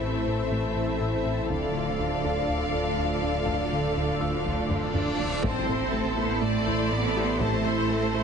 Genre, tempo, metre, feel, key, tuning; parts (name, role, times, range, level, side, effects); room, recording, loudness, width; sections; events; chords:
cinematic, hybrid orchestral and electronic film score; 122 BPM; 4/4; straight; A minor; A4 = 440 Hz
rich studio violin section; melody; 0.0-8.2 s; A4 to F5; -33 LUFS; left 3 dB
clear symphonic violin section; second line; 0.0-8.2 s; A4 to C6; -35 LUFS; left 2 dB
rich symphonic viola section; accompaniment; 0.0-8.2 s; C4 to C5; -35 LUFS; right 2 dB
mellow French horn section; sustained chords; 0.0-8.2 s; E3 to C5; -35 LUFS; left 3 dB
warm analog pad; sustained chords; 0.0-8.2 s; A3 to A4; -32 LUFS; left 1 dB; chorus
soft round pluck; arpeggios; 0.0-8.2 s; D3 to A4; -38 LUFS; right 1 dB
round analog bass; riff; 0.0-8.2 s; D2 to A3; -34 LUFS; left 2 dB
rich symphonic double bass section; bass; 0.0-8.2 s; A1 to D2; -34 LUFS; right 4 dB
saturated sub bass; bass; 0.0-8.2 s; D1 to A1; -37 LUFS; equal
warm chamber cello section; bass; 0.0-8.2 s; A2 to D4; -33 LUFS; right 5 dB
felt-muted upright piano; texture; 0.0-8.2 s; F4 to E6; -42 LUFS; equal
taiko ensemble; drums; 1.5-7.9 s; -34 LUFS; equal
reverse cymbal and impact; sound effects; 4.8-7.4 s; -37 LUFS; equal
wet scoring stage reverb, RT60 1.5 s; heavily compressed radio sound, multiband compression, nothing above 10.5 kHz; -24 LUFS; side -6 dB against mid
0.0-5.4 A section; 5.4-8.2 B section
drum fill 4.7-5.4; reverse cymbal 4.8-5.4; impact 5.4-7.4
0.0 Am; 1.5 Dm; 5.4 Am